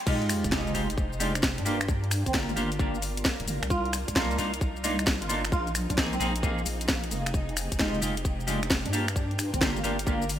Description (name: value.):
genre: UK garage, two-step garage.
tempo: 132 BPM.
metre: 4/4.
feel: swing 66% on 16ths.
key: F dorian.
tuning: A4 = 440 Hz.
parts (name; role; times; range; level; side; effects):
flamenco guitar; melody; 0.1-10.3 s; Bb3 to F4; -35 LUFS; right 1 dB; ensemble chorus, digital delay.
soft string machine; sustained chords; 0.1-10.4 s; Ab3 to C5; -40 LUFS; equal; ensemble chorus, sidechain pumping.
semi-hollow electric guitar; stabs; 0.1-10.2 s; Ab3 to Ab4; -31 LUFS; equal; wide subtle chorus.
electronic kick drum; drums; 0.1-10.2 s; none; -29 LUFS; equal; small room ambience.
garage drum kit; drums; 0.1-10.4 s; crash cymbal, finger snaps, hi-hat, shaker, snare drum; -30 LUFS; left 1 dB; small room ambience.
sub drop; sound effects; 0.1-1.9 s; none; -38 LUFS; equal; none.
deep soft wobble bass; bass; 0.4-10.4 s; D1 to G2; -32 LUFS; equal; chorus.
room: light reverb, digital ambience.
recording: bright 1980s-style digital production.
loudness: -25 LUFS.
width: side -11 dB against mid.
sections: 0.1-10.4 A section.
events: drop 0.1-10.4; impact 0.1-1.9.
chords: 0.1 Fm9; 1.7 Gm7; 3.7 Cm11; 5.5 Bb9sus4; 7.3 Fm9; 8.9 Gm7.